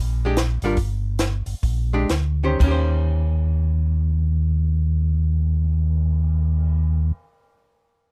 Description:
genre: soul jazz organ trio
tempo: 114-158 BPM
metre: 4/4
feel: swing 64% on 8ths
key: Eb mixolydian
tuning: A4 = 442 Hz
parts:
  - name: mellow tonewheel organ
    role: bass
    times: 0.0-7.1 s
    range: G1 to Eb2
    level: -22 LUFS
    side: equal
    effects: chorus vibrato, slow rotary speaker
  - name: archtop guitar, miked and amplified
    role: accompaniment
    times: 0.2-7.3 s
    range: Eb3 to C5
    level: -28 LUFS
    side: equal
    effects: none
  - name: compact cocktail drum kit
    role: drums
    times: 0.4-6.7 s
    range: crash cymbal, cymbal swell, hi-hat, kick drum, snare drum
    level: -25 LUFS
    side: equal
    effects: none
room: little or no reverb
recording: close, detailed microphones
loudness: -21 LUFS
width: mono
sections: 0.0-2.6 A section; 2.6-6.8 B section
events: slowing down 0.0-2.6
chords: 0.0 Bb6; 0.8 N.C.; 1.6 Bb13; 2.6 Eb6

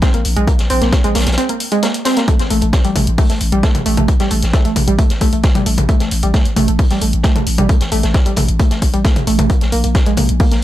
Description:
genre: driving peak-time techno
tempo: 133 BPM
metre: 4/4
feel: straight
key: unclear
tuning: A4 = 440 Hz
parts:
  - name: warbly dusty pluck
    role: riff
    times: 0.0-10.6 s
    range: G3 to C4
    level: -18 LUFS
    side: right 1 dB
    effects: chorus, tube saturation, sidechain pumping, ping-pong delay
  - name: growling 808-style bass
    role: bass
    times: 0.0-10.6 s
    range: A1 to Bb1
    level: -18 LUFS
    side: equal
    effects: overdrive, sidechain pumping, low-pass filter
  - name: electronic kick drum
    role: drums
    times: 0.0-10.5 s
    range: none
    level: -14 LUFS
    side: equal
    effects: none
  - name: punchy analog drum machine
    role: drums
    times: 0.0-10.6 s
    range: hi-hat, toms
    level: -22 LUFS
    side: left 2 dB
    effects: sidechain pumping on hats, sidechain pumping on toms
  - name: vintage drum kit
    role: drums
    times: 0.0-10.6 s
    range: hi-hat, snare drum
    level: -26 LUFS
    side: equal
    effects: sidechain pumping on hats, high-pass filter on hats, high-pass filter on snare, high-pass filter on room
room: digital ambience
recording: none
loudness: -12 LUFS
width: side -14 dB against mid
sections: 0.0-10.6 A section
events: break 1.4-2.3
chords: 0.0 Bbsus2; 2.3 N.C.

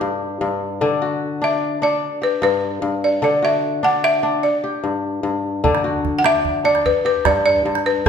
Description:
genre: west african traditional, West African string and xylophone music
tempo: 99 BPM (dotted quarters)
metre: 12/8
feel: straight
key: D major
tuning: A4 = 440 Hz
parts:
  - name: balafon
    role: melody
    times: 0.0-8.1 s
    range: G4 to F#5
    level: -18 LUFS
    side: equal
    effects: none
  - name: kora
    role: arpeggios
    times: 0.0-8.1 s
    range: G2 to G4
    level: -21 LUFS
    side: left 3 dB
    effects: none
  - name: calabash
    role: percussion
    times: 5.6-8.1 s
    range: none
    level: -23 LUFS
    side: right 6 dB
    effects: none
room: wet recital hall reverb, RT60 1.4 s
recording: recorded in a church or concert hall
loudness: -16 LUFS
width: side -7 dB against mid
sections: 0.0-5.6 A section; 5.6-8.1 A section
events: none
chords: 0.0 N.C.; 0.8 D; 2.0 N.C.; 3.2 D; 4.4 N.C.; 5.6 D; 6.9 N.C.

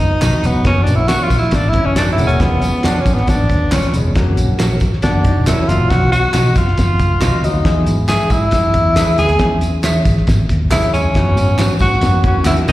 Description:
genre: uptempo 1960s-style soul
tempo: 137 BPM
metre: 4/4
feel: straight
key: unclear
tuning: A4 = 440 Hz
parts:
  - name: warm tenor saxophone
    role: melody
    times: 0.0-12.7 s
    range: B3 to G#4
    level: -17 LUFS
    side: equal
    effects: slapback echo
  - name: vintage muted fingered electric bass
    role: bass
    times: 0.0-12.7 s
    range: E1 to E3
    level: -16 LUFS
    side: equal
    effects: none
  - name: tambourine and handclaps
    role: percussion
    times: 0.0-12.7 s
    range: none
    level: -28 LUFS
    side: left 1 dB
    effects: slapback echo
  - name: electric guitar through a small old amp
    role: stabs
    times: 0.2-12.6 s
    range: C#4 to E5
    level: -25 LUFS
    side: right 3 dB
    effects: slapback echo
  - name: cloth-damped thuddy drum kit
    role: drums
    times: 0.2-12.7 s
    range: hi-hat, kick drum, snare drum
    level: -18 LUFS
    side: equal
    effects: slapback echo
  - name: warm grand piano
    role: accompaniment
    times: 0.4-12.7 s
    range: F#3 to G#4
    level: -24 LUFS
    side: left 2 dB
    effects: slapback echo
  - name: vintage hollow-body jazz guitar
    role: riff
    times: 1.7-5.9, 12.3-12.7 s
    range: E3 to F#4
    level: -23 LUFS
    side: left 5 dB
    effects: slapback echo
room: light reverb, small room ambience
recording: live gig heard through the venue's PA, recital hall reverb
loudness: -12 LUFS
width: side -16 dB against mid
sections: 0.0-12.7 A section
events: tenor saxophone solo 0.0-12.7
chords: 0.0 B; 0.7 F#; 2.4 C#7/E#; 4.2 F#; 5.9 B; 7.7 E; 9.4 C#m; 11.1 F#sus4; 12.0 F#

